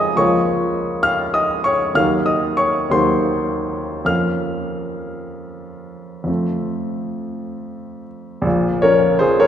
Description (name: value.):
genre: classical, romantic nocturne for solo piano.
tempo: 49-69 BPM (dotted quarters).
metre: 12/8.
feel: rubato.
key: Bb minor.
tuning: A4 = 440 Hz.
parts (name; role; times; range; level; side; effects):
warm baby grand piano; solo; 0.0-9.5 s; Bb1 to F6; -17 LUFS; equal; none.
room: wet church reverb, RT60 2.7 s.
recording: recorded in a church or concert hall.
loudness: -16 LUFS.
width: side -9 dB against mid.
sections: 0.0-8.5 A section; 8.5-9.5 B section.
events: none.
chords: 0.2 Bbm/Db; 2.0 Cm7b5/Eb; 4.1 Bbm/F; 6.3 F; 8.5 Bbm.